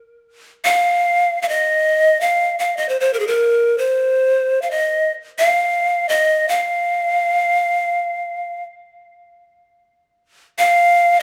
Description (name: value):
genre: world meditative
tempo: free time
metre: none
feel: none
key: unclear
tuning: A4 = 441 Hz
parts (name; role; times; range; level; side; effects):
- breathy large pan pipes; solo; 0.6-11.2 s; Ab4 to F5; -17 LUFS; equal; none
room: wet studio reverb, RT60 0.6 s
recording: none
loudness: -17 LUFS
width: mono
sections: 0.0-11.2 A section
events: none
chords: none